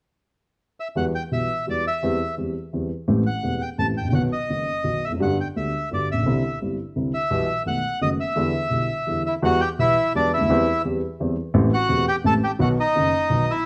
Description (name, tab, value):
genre	tango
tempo	170 BPM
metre	3/4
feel	rubato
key	E minor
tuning	A4 = 439 Hz
part	bandoneon	melody	0.8-13.7 s	D4 to A5	-26 LUFS	equal	none
part	dark upright piano	accompaniment	1.0-13.5 s	E1 to G4	-25 LUFS	equal	none
room	moderate large studio reverb, RT60 1.1 s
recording	none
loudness	-23 LUFS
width	mono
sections	1.0-9.4 A section; 9.4-13.7 A section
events	none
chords	0.0 N.C.; 1.0 Emadd9; 2.0 C/E; 3.1 Am7; 4.1 B; 5.2 Gmaj7; 6.3 Cadd9; 7.3 Em/B; 7.7 B7; 8.4 Em7; 9.4 Emadd9; 10.5 C/E; 11.6 Am7; 12.6 B